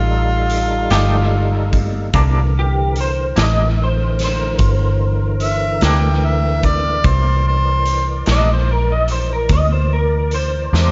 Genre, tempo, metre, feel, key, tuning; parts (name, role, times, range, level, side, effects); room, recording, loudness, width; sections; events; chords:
slow blues; 49 BPM (dotted quarters); 12/8; straight; C mixolydian; A4 = 445 Hz
mellow harmonica; second line; 0.0-8.1 s; F4 to G5; -23 LUFS; equal; overdrive, analog delay
bright tonewheel organ; sustained chords; 0.0-10.9 s; D3 to D5; -28 LUFS; equal; slow rotary speaker, chorus vibrato
vintage muted fingered electric bass; bass; 0.0-10.9 s; G1 to E2; -19 LUFS; equal
raw garage drum kit; drums; 0.5-10.9 s; hi-hat, kick drum, snare drum; -24 LUFS; equal; analog delay
clean electric guitar; accompaniment; 0.9-10.9 s; C3 to G4; -25 LUFS; equal; tremolo
electric guitar through a small old amp; melody; 2.6-10.9 s; G4 to Eb5; -23 LUFS; equal; ensemble chorus
small room ambience; echo-heavy mix, nothing above 7.6 kHz; -16 LUFS; mono
0.0-10.9 A section
drum fill 10.7
0.0 F9; 2.1 C9